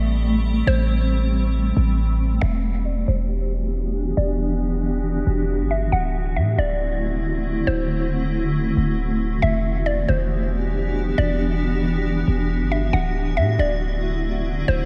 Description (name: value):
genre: hip hop, atmospheric cloud-rap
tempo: 137 BPM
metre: 4/4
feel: half-time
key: E minor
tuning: A4 = 441 Hz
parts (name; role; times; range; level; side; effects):
- granular cloud pad; sustained chords; 0.0-14.9 s; D3 to G4; -26 LUFS; equal; built-in reverb, low-pass filter
- warm 808-style bass; bass; 0.0-14.9 s; D1 to A2; -24 LUFS; equal; none
- mallet-like synth pluck; melody; 0.7-14.9 s; C5 to F#5; -30 LUFS; equal; chorus, low-pass filter, diffuse ambient delay
room: moderate church reverb, RT60 3.8 s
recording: dreamy mix soaked in reverb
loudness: -22 LUFS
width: mono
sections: 0.0-2.4 A section; 2.4-9.4 B section; 9.4-14.9 C section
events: filter sweep 2.4-9.4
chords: 0.0 Am7; 2.4 Em7; 5.9 D7; 9.4 Em7; 12.9 D7